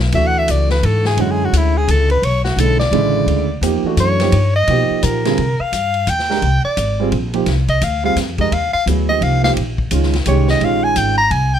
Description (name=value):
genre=modal jazz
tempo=172 BPM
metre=3/4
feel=swing 62% on 8ths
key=B dorian, C phrygian from 5.4 s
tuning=A4 = 440 Hz
part: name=upright bass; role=bass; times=0.0-11.6 s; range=Ab1 to C3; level=-17 LUFS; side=left 1 dB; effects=none
part: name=warm baby grand piano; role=accompaniment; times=0.1-11.1 s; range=C#3 to Bb4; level=-19 LUFS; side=right 6 dB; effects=none
part: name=vintage drum kit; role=drums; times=0.1-11.4 s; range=hi-hat, kick drum, ride cymbal, snare drum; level=-26 LUFS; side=left 3 dB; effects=none
part: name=breathy soprano saxophone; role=melody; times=0.2-11.6 s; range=E4 to Bb5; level=-18 LUFS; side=left 1 dB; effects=none
room=light reverb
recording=none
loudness=-13 LUFS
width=side -9 dB against mid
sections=0.0-5.4 A section; 5.4-11.6 A section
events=soprano saxophone solo 0.0-11.6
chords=0.0 Bm11; 4.3 G7alt; 5.4 Cm11; 9.6 Bbm11